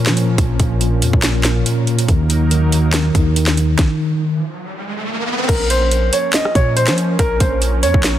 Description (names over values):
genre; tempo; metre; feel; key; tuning
hip hop, trap; 141 BPM; 4/4; half-time; Bb minor; A4 = 440 Hz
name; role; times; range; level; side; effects
mellow tine electric piano; accompaniment; 0.0-4.4 s; Bb2 to Eb4; -17 LUFS; left 1 dB; medium stereo tremolo, low-pass filter
warm analog pad; sustained chords; 0.0-8.2 s; F3 to Bb4; -25 LUFS; right 4 dB; lush chorus
warm 808-style bass; bass; 0.0-8.2 s; Bb1 to F3; -18 LUFS; equal; none
trap drum kit; drums; 0.1-8.1 s; crash cymbal, handclaps, hi-hat, kick drum, rim click, snare drum; -18 LUFS; equal; none
riser; sound effects; 4.4-5.5 s; none; -23 LUFS; right 1 dB; none
dark concert grand piano; melody; 5.5-8.2 s; Bb4 to Eb5; -18 LUFS; equal; low-pass filter, tape echo
room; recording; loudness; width
little or no reverb; dense, heavily limited modern master; -13 LUFS; side -12 dB against mid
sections
0.0-5.5 A section; 5.5-8.2 B section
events
stop 3.8-5.5; riser 4.4-5.5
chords
0.0 Bbm; 2.1 Ebm; 5.5 Bbm